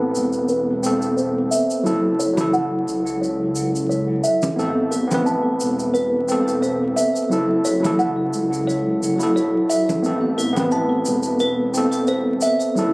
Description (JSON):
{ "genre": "trip hop", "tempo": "88 BPM", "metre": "4/4", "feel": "swing 54% on 16ths", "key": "unclear", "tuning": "A4 = 437 Hz", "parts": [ { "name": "overdriven tine electric piano", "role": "accompaniment", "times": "0.0-12.9 s", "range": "F#3 to B4", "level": "-19 LUFS", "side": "equal", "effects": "harmonic tremolo, vintage 12-bit sampler grit, low-pass filter, tape echo" }, { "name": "dark detuned saw bass", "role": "bass", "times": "0.0-12.9 s", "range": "E1 to C#2", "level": "-28 LUFS", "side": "equal", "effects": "tube saturation" }, { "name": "tube shaker and congas", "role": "percussion", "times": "0.2-12.9 s", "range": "none", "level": "-28 LUFS", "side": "equal", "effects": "none" }, { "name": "music box", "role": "arpeggios", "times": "0.5-12.7 s", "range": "A4 to A5", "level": "-24 LUFS", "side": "equal", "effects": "low-pass filter, tape echo" } ], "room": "little or no reverb", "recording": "recorded on a phone in the room, club reverb, vinyl crackle, compression", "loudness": "-17 LUFS", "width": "side -24 dB against mid", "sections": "0.0-12.9 A section", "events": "filter sweep on music box 0.0-12.9", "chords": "0.0 Amadd9; 1.9 F#m7; 4.6 Amadd9; 7.3 F#m7; 10.0 Amadd9" }